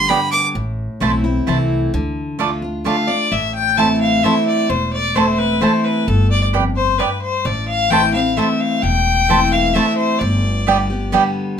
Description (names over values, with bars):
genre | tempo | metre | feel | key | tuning
bluegrass | 131 BPM | 3/4 | straight | A minor | A4 = 438 Hz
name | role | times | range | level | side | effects
clear fiddle | melody | 0.0-0.5 s | B5 to D6 | -16 LUFS | right 3 dB | none
picked steel-string acoustic guitar | accompaniment | 0.0-11.6 s | E2 to G4 | -19 LUFS | left 1 dB | none
upright bass | bass | 0.0-11.1 s | E1 to D2 | -21 LUFS | equal | none
mandolin | stabs | 0.1-11.2 s | A3 to A5 | -18 LUFS | right 5 dB | none
clear fiddle | second line | 2.9-11.1 s | A4 to A5 | -18 LUFS | left 5 dB | none
room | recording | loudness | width
moderate studio ambience, RT60 0.5 s | minimal, uncompressed stereo recording, faint mains hum | -14 LUFS | side -8 dB against mid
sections
0.0-1.9 A section; 1.9-11.6 A section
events
fiddle solo 0.0-1.9, 1.9-11.6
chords
0.0 G; 0.6 Am; 1.9 Dm; 3.3 Am; 6.1 G; 7.5 Am; 10.2 G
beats
0.10 | 0.56 1.02 1.48 | 1.94 2.40 2.86 | 3.32 3.78 4.24 | 4.70 5.16 5.62 | 6.08 6.54 7.00 | 7.46 7.92 8.37 | 8.83 9.29 9.75 | 10.21 10.67 11.13